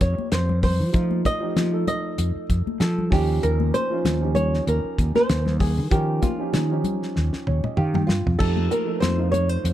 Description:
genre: electric jazz fusion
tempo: 97 BPM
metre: 4/4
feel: swing 55% on 16ths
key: Eb mixolydian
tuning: A4 = 440 Hz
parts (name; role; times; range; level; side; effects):
- flamenco guitar; melody; 0.0-9.7 s; Eb4 to Eb5; -26 LUFS; right 1 dB; plate reverb
- dark grand piano; accompaniment; 0.0-9.7 s; F3 to G5; -29 LUFS; right 3 dB; none
- fretless electric bass; bass; 0.0-9.7 s; Eb2 to F3; -22 LUFS; equal; none
- damped 70s drum kit; drums; 0.0-9.7 s; crash cymbal, hi-hat, kick drum, snare drum, toms; -25 LUFS; equal; none
- congas; percussion; 0.2-9.5 s; none; -30 LUFS; left 6 dB; none
room: light reverb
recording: dark, warm production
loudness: -20 LUFS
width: side -12 dB against mid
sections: 0.0-8.4 A section; 8.4-9.7 A section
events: drum fill 7.2-8.4; grand piano fill 7.2-8.4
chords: 0.0 F9; 3.1 Eb9; 8.4 F9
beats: 0.32 | 0.94 1.57 2.19 2.81 | 3.43 4.05 4.67 5.29 | 5.92 6.54 7.16 7.78 | 8.40 9.02 9.64

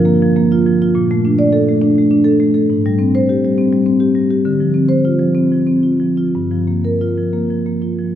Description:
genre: classical, contemporary piece for solo marimba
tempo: 60-69 BPM (dotted quarters)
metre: 6/8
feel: rubato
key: unclear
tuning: A4 = 441 Hz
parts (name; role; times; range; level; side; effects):
- marimba with soft mallets; solo; 0.0-8.2 s; G2 to D5; -12 LUFS; equal; none
room: wet church reverb, RT60 2.6 s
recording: none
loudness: -12 LUFS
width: side -10 dB against mid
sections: 0.0-8.2 A section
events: none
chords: 0.0 Gm7; 1.0 Bbmaj7; 2.7 Abmaj7; 4.5 Dm7; 6.3 Gm7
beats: 0.07 | 0.95 1.82 | 2.70 3.58 | 4.46 5.37 | 6.33 7.33

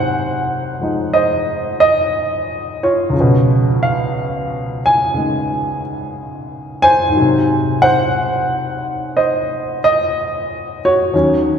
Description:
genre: solo jazz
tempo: 60 BPM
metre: 4/4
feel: swing 68% on 8ths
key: Ab mixolydian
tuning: A4 = 440 Hz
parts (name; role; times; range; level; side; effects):
- warm baby grand piano; solo; 0.0-11.6 s; Db2 to Ab5; -14 LUFS; equal; none
room: wet church reverb, RT60 3.4 s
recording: recorded in a church or concert hall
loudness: -14 LUFS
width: side -7 dB against mid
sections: 0.0-11.6 A section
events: none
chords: 0.0 Ab7; 3.1 Db7; 7.1 Ab7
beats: 0.14 1.14 2.14 | 3.14 4.14 5.14 6.14 | 7.14 8.14 9.14 10.14 | 11.14

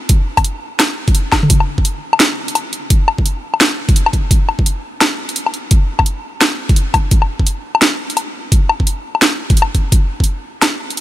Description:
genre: drum and bass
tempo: 171 BPM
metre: 4/4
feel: swing 60% on 16ths, half-time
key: none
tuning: none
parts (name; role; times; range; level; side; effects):
- drum and bass drum kit; drums; 0.1-11.0 s; hi-hat, snare drum, toms, woodblock; -15 LUFS; left 1 dB; overdrive
- electronic kick drum; drums; 0.1-10.3 s; none; -13 LUFS; equal; overdrive
room: little or no reverb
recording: none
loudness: -12 LUFS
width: side -14 dB against mid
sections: 0.0-1.5 A section; 1.5-11.0 A section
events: drop 0.0-1.5, 1.5-11.0; drum fill 1.3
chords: none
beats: | 0.10 0.45 0.80 1.15 | 1.50 1.85 2.20 2.55 | 2.90 3.26 3.61 3.96 | 4.31 4.66 5.01 5.36 | 5.71 6.06 6.41 6.76 | 7.12 7.47 7.82 8.17 | 8.52 8.87 9.22 9.57 | 9.92 10.27 10.62 10.97

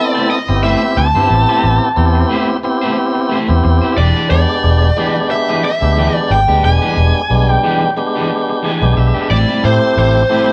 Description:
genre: blues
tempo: 90 BPM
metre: 4/4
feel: swing 55% on 16ths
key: A minor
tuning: A4 = 439 Hz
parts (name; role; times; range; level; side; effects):
- lead guitar through a small cranked amp; melody; 0.0-10.5 s; C5 to A5; -18 LUFS; equal; overdrive
- tonewheel organ; accompaniment; 0.0-10.5 s; G3 to G#5; -19 LUFS; equal; overdrive
- electric guitar at the edge of break-up; stabs; 0.1-10.5 s; A2 to C5; -24 LUFS; equal; none
- vintage muted fingered electric bass; bass; 0.5-10.2 s; E1 to A2; -16 LUFS; equal; none
room: moderate large studio reverb, RT60 1.0 s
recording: band playing live in one room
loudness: -14 LUFS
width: mono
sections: 0.0-10.5 A section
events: tonewheel organ fill 8.3-9.3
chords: 0.0 Am7; 4.0 E7#9; 9.3 Am7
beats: 0.64 | 1.30 1.97 2.64 3.30 | 3.97 4.64 5.30 5.97 | 6.64 7.30 7.97 8.64 | 9.30 9.97

